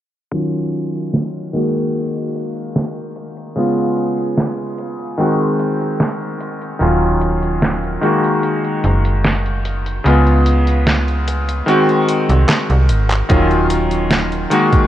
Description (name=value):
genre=vaporwave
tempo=74 BPM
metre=4/4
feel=straight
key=Eb minor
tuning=A4 = 439 Hz
part: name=clear electric grand piano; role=accompaniment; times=0.3-14.9 s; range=Db3 to Gb4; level=-17 LUFS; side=left 1 dB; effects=lush chorus, analog delay
part: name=detuned 8-bit digital drum machine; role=drums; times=0.3-14.9 s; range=handclaps, hi-hat, snare drum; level=-19 LUFS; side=right 1 dB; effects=low-pass filter on hats, studio reverb, low-pass filter on snare
part: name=slap-like FM bass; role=bass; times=6.8-14.5 s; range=Eb1 to Db2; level=-16 LUFS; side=equal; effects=none
part: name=electronic kick drum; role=drums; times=13.3-14.9 s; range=none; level=-13 LUFS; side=right 1 dB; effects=studio reverb
room=light reverb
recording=cassette tape, low-pass filter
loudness=-14 LUFS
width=side -12 dB against mid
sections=0.3-13.3 A section; 13.3-14.9 B section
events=filter sweep on drum 0.3-13.3; filter sweep 0.3-13.3; drum fill 12.5-13.3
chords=0.3 Ebm9; 1.5 Gb69; 3.6 Db7; 5.2 Ab7; 6.8 Ebm9; 8.0 Gb69; 10.1 Db7; 11.7 Ab7; 13.3 Ebm9